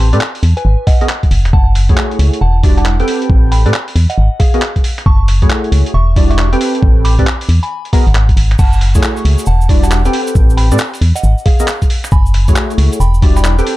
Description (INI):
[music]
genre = UK garage, two-step garage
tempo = 136 BPM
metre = 4/4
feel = swing 64% on 16ths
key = unclear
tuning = A4 = 441 Hz
[part]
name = soft synth bell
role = melody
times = 0.0-13.5 s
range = G#4 to D6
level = -23 LUFS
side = right 1 dB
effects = chorus, digital delay
[part]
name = percussive organ stab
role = stabs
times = 0.0-13.8 s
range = G3 to G5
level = -18 LUFS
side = equal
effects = ensemble chorus
[part]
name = organ-like FM bass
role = bass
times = 0.0-13.6 s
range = D#1 to A2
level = -11 LUFS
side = equal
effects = sidechain pumping
[part]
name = boom bap sampler-style drum kit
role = drums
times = 0.1-13.8 s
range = crash cymbal, finger snaps, handclaps, hi-hat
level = -21 LUFS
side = equal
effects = none
[part]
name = electronic kick drum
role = drums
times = 0.9-13.3 s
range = none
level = -11 LUFS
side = equal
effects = none
[part]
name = cabasa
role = percussion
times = 8.6-13.6 s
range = none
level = -30 LUFS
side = right 2 dB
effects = none
[sound]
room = little or no reverb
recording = dark, warm production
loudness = -9 LUFS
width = side -17 dB against mid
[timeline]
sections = 0.0-13.8 A section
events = none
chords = 0.0 Am7; 0.6 G#m7; 1.5 F#m7; 2.4 Em7; 3.1 Am7; 4.2 G#m7; 5.1 F#m7; 5.9 Em7; 6.6 Am7; 7.7 G#m7; 8.6 F#m7; 9.5 Em7; 10.1 Am7; 11.2 G#m7; 12.1 F#m7; 13.0 Em7